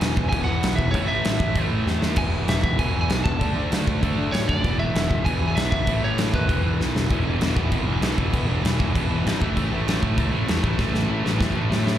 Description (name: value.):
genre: punk rock.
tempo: 195 BPM.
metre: 4/4.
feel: straight.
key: E mixolydian.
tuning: A4 = 440 Hz.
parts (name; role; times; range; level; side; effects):
lightly driven lead guitar; melody; 0.0-6.8 s; B4 to A5; -27 LUFS; right 1 dB; none.
distorted electric guitar; riff; 0.0-12.0 s; E2 to D4; -26 LUFS; equal; distortion.
fuzz picked electric bass; bass; 0.0-12.0 s; E1 to D3; -25 LUFS; equal; overdrive.
big rock drum kit; drums; 0.0-11.9 s; crash cymbal, kick drum, snare drum; -24 LUFS; equal; none.
room: small room ambience.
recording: live gig heard through the venue's PA, club reverb.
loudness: -20 LUFS.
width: side -11 dB against mid.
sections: 0.0-7.1 A section; 7.1-12.0 B section.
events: drum fill 1.9-2.2, 6.8-7.1, 10.8-12.0.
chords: 0.0 E; 0.9 A5; 2.2 E; 3.4 D5; 4.6 E5; 5.9 A; 6.5 E5; 7.1 E; 9.4 A5.